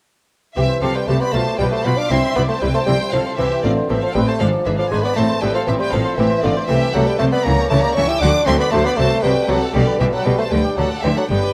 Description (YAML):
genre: classical, baroque-style concerto movement with solo episodes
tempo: 78 BPM (dotted quarters)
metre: 6/8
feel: straight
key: C major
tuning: A4 = 444 Hz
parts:
  - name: mellow bassoon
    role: melody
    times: 0.6-11.5 s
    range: D3 to E4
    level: -22 LUFS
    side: equal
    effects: none
  - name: rich chamber violin section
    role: melody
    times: 0.6-11.5 s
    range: D5 to E6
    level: -28 LUFS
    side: equal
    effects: none
  - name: warm studio violin section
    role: second line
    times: 0.6-11.5 s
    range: F4 to G5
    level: -28 LUFS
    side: equal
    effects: none
  - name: lute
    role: accompaniment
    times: 0.6-11.5 s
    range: G2 to D5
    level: -29 LUFS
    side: equal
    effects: none
  - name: warm studio viola section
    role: accompaniment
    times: 0.6-11.4 s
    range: E3 to G4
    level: -29 LUFS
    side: equal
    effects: none
  - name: rich chamber cello section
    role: bass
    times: 0.6-11.4 s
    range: G2 to D3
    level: -25 LUFS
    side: equal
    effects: none
  - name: rich symphonic double bass section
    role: bass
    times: 0.6-11.4 s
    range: G1 to D2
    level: -25 LUFS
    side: equal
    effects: none
room: moderate recital hall reverb, RT60 1.5 s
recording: none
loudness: -17 LUFS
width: mono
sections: 0.6-11.5 A section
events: none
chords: 0.6 C5; 1.3 G7/B; 2.1 C; 3.6 Am; 4.4 G#dim7; 5.2 Am; 6.7 Am7/C; 7.5 C#dim; 8.2 D; 9.0 Am13/C; 9.8 G/B; 10.5 D5